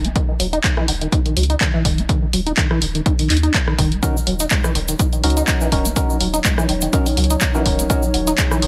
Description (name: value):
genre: acid house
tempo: 124 BPM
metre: 4/4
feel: swing 55% on 16ths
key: Eb phrygian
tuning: A4 = 440 Hz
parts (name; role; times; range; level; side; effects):
- liquid acid bass; riff; 0.0-8.7 s; Eb2 to Eb4; -25 LUFS; equal; phaser, lush chorus, dub echo
- warm sub bass; bass; 0.0-8.7 s; Eb1 to Eb2; -24 LUFS; equal; tube saturation, sidechain pumping
- punchy analog drum machine; drums; 0.0-8.7 s; handclaps, hi-hat, rim click; -24 LUFS; equal; none
- electronic kick drum; drums; 0.2-8.5 s; none; -21 LUFS; equal; none
- dark analog pad; sustained chords; 4.0-8.7 s; Gb3 to Db5; -28 LUFS; equal; chorus, sidechain pumping
- percussive organ stab; stabs; 4.0-8.0 s; Db4 to Bb4; -28 LUFS; equal; chorus, dub echo
- cabasa; percussion; 4.0-8.6 s; none; -29 LUFS; equal; none
room: light reverb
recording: heavily compressed radio sound, multiband compression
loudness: -18 LUFS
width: mono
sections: 0.0-8.7 A section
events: filter sweep on acid bass 0.0-8.7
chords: 0.0 Ebm7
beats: | 0.16 0.64 1.12 1.61 | 2.09 2.58 3.06 3.54 | 4.03 4.51 5.00 5.48 | 5.96 6.45 6.93 7.42 | 7.90 8.38